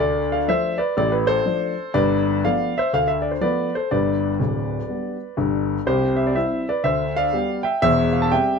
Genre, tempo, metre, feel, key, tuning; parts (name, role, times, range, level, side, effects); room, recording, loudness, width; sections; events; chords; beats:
jazz, stride piano; 122 BPM; 4/4; swing 61% on 8ths; A4 = 440 Hz
warm grand piano; solo; 0.0-8.6 s; D1 to A5; -19 LUFS; left 1 dB
light reverb; -19 LUFS; side -5 dB against mid
0.0-8.6 A section
0.0 Dm7; 1.9 G9; 3.9 G; 5.9 C; 6.8 G7/D; 7.8 C/E
0.47 0.96 1.45 | 1.94 2.43 2.92 3.41 | 3.90 4.39 4.88 5.37 | 5.86 6.35 6.84 7.33 | 7.83 8.32